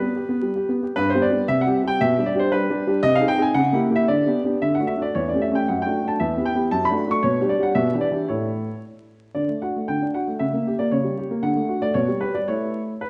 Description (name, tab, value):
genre	classical-period piano sonatina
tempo	114 BPM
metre	2/4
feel	rubato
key	G major, D major from 5.2 s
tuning	A4 = 438 Hz
part	warm baby grand piano	solo	0.0-13.1 s	E2 to C#6	-22 LUFS	equal	none
room	wet recital hall reverb, RT60 1.6 s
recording	vinyl crackle, nothing above 10.3 kHz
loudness	-22 LUFS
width	mono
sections	1.0-9.4 A section; 9.4-13.1 B section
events	none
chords	0.0 G; 1.5 C5; 2.0 G/B; 3.0 Ab/C; 3.5 C#dim7; 4.1 G/D; 4.6 D; 5.2 A7/E; 5.7 D/F#; 6.2 Em; 6.7 D/F#; 7.2 G/B; 7.8 Em7/B; 8.3 A; 9.4 D; 10.4 C#dim7; 11.4 D; 11.9 G/B; 12.5 A